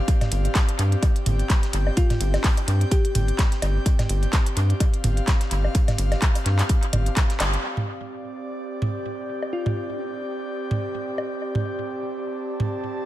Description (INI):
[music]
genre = minimal techno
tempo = 127 BPM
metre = 4/4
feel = swing 56% on 16ths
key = unclear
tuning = A4 = 440 Hz
[part]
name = airy breathy pad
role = texture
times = 0.0-13.1 s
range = C4 to A5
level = -30 LUFS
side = equal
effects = chorus, sidechain pumping
[part]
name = breakbeat sampler-style drum kit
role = drums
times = 0.1-7.5 s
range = hi-hat, snare drum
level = -39 LUFS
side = right 1 dB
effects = none
[part]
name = electronic kick drum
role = drums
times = 0.1-7.3 s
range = none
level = -20 LUFS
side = equal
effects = none
[part]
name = minimal click drum kit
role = drums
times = 0.1-7.6 s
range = handclaps, hi-hat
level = -28 LUFS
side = equal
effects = overdrive, low-pass filter on hats, low-pass filter on snare, low-pass filter on room, tape echo
[part]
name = electronic toms and woodblock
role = percussion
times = 0.2-12.7 s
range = none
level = -28 LUFS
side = right 1 dB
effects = tape echo
[part]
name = rubbery square bass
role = bass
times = 0.3-7.6 s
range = G1 to G2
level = -22 LUFS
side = equal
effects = tube saturation, sidechain pumping
[part]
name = bell-like FM electric piano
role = melody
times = 2.0-3.4, 9.5-10.0 s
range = F4 to G4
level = -30 LUFS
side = left 3 dB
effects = chorus, tape echo
[sound]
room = light reverb, digital ambience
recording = echo-heavy mix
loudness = -21 LUFS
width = side -14 dB against mid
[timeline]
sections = 0.0-7.6 A section; 7.6-13.1 B section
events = drop 0.0-7.6; drum fill 7.4; band accent 7.4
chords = 0.0 Gsus4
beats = | 0.08 0.55 1.02 1.50 | 1.97 2.44 2.92 3.39 | 3.86 4.33 4.80 5.28 | 5.75 6.22 6.69 7.17 | 7.64 8.11 8.58 9.06 | 9.53 10.00 10.47 10.95 | 11.42 11.89 12.36 12.84